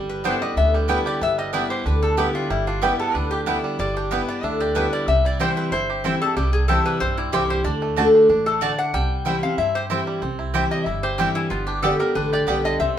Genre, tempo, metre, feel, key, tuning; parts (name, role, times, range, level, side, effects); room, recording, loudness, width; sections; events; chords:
bluegrass; 186 BPM; 4/4; straight; C major; A4 = 439 Hz
bluegrass banjo; melody; 0.0-13.0 s; D3 to G4; -29 LUFS; right 4 dB
picked steel-string acoustic guitar; accompaniment; 0.0-13.0 s; G2 to G4; -23 LUFS; left 1 dB
upright bass; bass; 0.0-13.0 s; G1 to G2; -26 LUFS; right 1 dB
lap resonator guitar; melody; 0.1-13.0 s; E4 to G5; -24 LUFS; left 3 dB
mandolin; stabs; 0.2-12.6 s; A3 to A5; -24 LUFS; right 3 dB
wet studio reverb, RT60 0.6 s; band playing live in one room; -19 LUFS; side -10 dB against mid
0.0-10.2 A section; 10.2-13.0 B section
resonator guitar played with a steel bar solo 10.2-13.0
0.0 G6; 5.1 C; 7.7 D; 8.9 C; 11.5 G